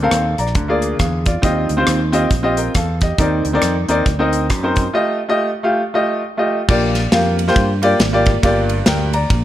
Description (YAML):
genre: uptempo gospel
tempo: 137 BPM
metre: 4/4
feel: swing 61% on 8ths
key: Bb major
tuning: A4 = 439 Hz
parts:
  - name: clear baby grand piano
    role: accompaniment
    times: 0.0-9.4 s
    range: G2 to Bb5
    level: -16 LUFS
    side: equal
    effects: none
  - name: fingered electric bass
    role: bass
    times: 0.0-9.4 s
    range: G1 to G2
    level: -20 LUFS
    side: right 1 dB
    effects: none
  - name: modern studio drum kit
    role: drums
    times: 0.1-9.4 s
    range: crash cymbal, hi-hat, kick drum, ride cymbal, rim click, snare drum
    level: -19 LUFS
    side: equal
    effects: none
room: light reverb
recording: none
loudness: -14 LUFS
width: side -13 dB against mid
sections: 0.0-6.7 A section; 6.7-9.4 B section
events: none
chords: 0.0 Bbmaj9; 0.6 Bb7/D; 1.4 Eb69; 3.2 Cm9; 4.9 F9; 6.7 Bb6; 8.4 Gm7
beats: 0.12 0.55 0.99 | 1.43 1.87 2.31 2.74 | 3.18 3.62 4.06 4.50 | 4.93 5.37 5.81 6.25 | 6.68 7.12 7.56 7.99 | 8.43 8.87 9.30